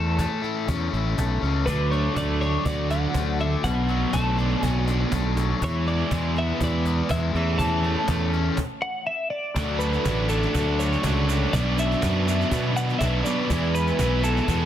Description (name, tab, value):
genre	indie rock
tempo	122 BPM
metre	4/4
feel	straight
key	unclear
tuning	A4 = 440 Hz
part	twelve-string electric guitar	melody	0.0-14.7 s	A4 to A5	-29 LUFS	left 1 dB	digital delay
part	biting overdriven guitar	riff	0.0-14.7 s	B2 to F#4	-28 LUFS	left 6 dB	none
part	fuzz fingered electric bass	bass	0.0-14.7 s	A1 to B2	-24 LUFS	equal	overdrive
part	cajon	drums	0.2-14.7 s	none	-30 LUFS	equal	none
part	biting overdriven guitar	riff	1.7-14.7 s	B2 to E4	-29 LUFS	right 8 dB	analog chorus, digital delay
part	combo organ	sustained chords	9.6-14.7 s	D4 to A5	-38 LUFS	right 2 dB	none
part	egg shaker	percussion	9.6-14.6 s	none	-41 LUFS	right 11 dB	none
room	little or no reverb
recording	dense, heavily limited modern master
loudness	-21 LUFS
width	side -10 dB against mid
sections	0.0-1.7 A section; 1.7-9.6 B section; 9.6-14.7 C section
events	stop 8.6-9.6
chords	0.0 A/E; 1.7 D; 3.6 Bm7; 5.6 E; 7.3 A/E; 9.6 D; 11.5 Bm7; 13.5 E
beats	0.18 0.68 1.17 | 1.66 2.16 2.65 3.15 | 3.64 4.13 4.63 5.12 | 5.62 6.11 6.61 7.10 | 7.59 8.09 8.58 9.07 | 9.57 10.06 10.55 11.04 | 11.54 12.03 12.52 13.01 | 13.50 13.99 14.49